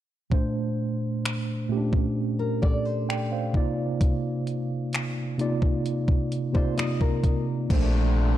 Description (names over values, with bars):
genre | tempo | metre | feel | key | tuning
contemporary R&B | 65 BPM | 4/4 | straight | Bb major | A4 = 438 Hz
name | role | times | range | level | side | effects
mellow tine electric piano | accompaniment | 0.3-8.4 s | Bb2 to G5 | -26 LUFS | right 1 dB | medium stereo tremolo
clean 12-bit digital drum machine | drums | 0.3-7.9 s | crash cymbal, finger snaps, hi-hat, kick drum | -25 LUFS | equal | overdrive
nylon-string guitar | arpeggios | 2.4-7.7 s | Bb4 to Eb5 | -34 LUFS | left 4 dB | digital delay
accordion | sustained chords | 7.7-8.4 s | Bb2 to A3 | -32 LUFS | left 4 dB | none
round analog bass | bass | 7.7-8.4 s | Bb1 | -22 LUFS | equal | none
downlifter | sound effects | 7.7-8.4 s | none | -37 LUFS | equal | none
room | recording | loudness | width
light reverb, digital ambience | dark, warm production | -23 LUFS | side -13 dB against mid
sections
0.3-7.7 A section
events
hi-hats muted 7.7-8.4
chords
0.3 Bbmaj9; 3.5 Cm11; 7.7 Bbmaj9